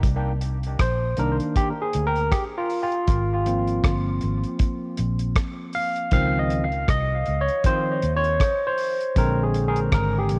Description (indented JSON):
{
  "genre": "lovers rock reggae",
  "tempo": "79 BPM",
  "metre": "4/4",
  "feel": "swing 58% on 16ths",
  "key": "C minor",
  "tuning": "A4 = 440 Hz",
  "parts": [
    { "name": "vintage muted fingered electric bass", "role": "bass", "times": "0.0-10.4 s", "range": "G1 to Eb2", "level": "-27 LUFS", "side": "equal", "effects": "none" },
    { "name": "damped 70s drum kit", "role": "drums", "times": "0.0-10.4 s", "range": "hi-hat, kick drum, rim click", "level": "-26 LUFS", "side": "equal", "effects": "cassette tape" },
    { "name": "barky tine electric piano", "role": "accompaniment", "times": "0.8-10.4 s", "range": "D3 to F5", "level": "-26 LUFS", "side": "equal", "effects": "overdrive, cassette tape, analog delay" }
  ],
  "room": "light reverb, small room ambience",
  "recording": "home recording on cassette",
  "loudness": "-23 LUFS",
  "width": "mono",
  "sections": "0.0-10.4 A section",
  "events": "tine electric piano solo 0.0-10.4",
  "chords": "0.0 Cm7; 3.1 Ab6; 6.1 Dbmaj7; 9.2 Bb7"
}